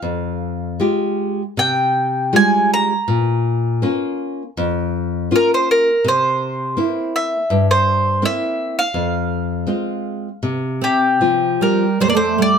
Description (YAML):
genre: fado-style ballad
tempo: 80 BPM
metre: 4/4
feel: uneven beats, rubato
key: F minor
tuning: A4 = 440 Hz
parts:
  - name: mandolin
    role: melody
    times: 0.0-12.6 s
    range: G4 to Bb5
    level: -18 LUFS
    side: equal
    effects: plate reverb
  - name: nylon-string guitar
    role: accompaniment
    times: 0.0-12.6 s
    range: F2 to G4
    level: -19 LUFS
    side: left 2 dB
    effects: none
  - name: fingerpicked twelve-string acoustic guitar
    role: second line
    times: 10.8-12.6 s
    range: C3 to Bb3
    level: -18 LUFS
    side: right 4 dB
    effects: none
room: moderate small room ambience, RT60 0.5 s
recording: none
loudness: -16 LUFS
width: side -6 dB against mid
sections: 0.0-12.0 A section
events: none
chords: 0.0 Fmadd9; 3.1 Bbm; 6.0 C7; 8.9 Fm; 12.0 Fsus2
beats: | 0.03 0.81 1.57 2.33 | 3.08 3.82 4.56 5.30 | 6.04 6.77 7.50 8.22 | 8.94 9.67 10.43 11.21 | 12.00